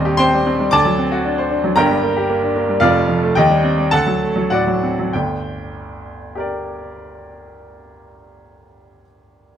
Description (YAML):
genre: classical, virtuoso piano study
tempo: 93-115 BPM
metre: 2/4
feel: rubato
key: G minor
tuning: A4 = 440 Hz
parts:
  - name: bright grand piano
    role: solo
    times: 0.0-9.6 s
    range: Eb1 to Eb6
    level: -15 LUFS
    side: equal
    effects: none
room: light reverb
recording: close, detailed microphones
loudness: -14 LUFS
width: side -9 dB against mid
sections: 0.0-5.1 A section; 5.1-7.6 B section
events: slowing down 2.3-5.1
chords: 0.0 Cm/Eb; 0.7 D7; 1.8 Gm; 2.8 Dm/F; 3.4 Cm/Eb; 3.9 D7; 5.1 Gm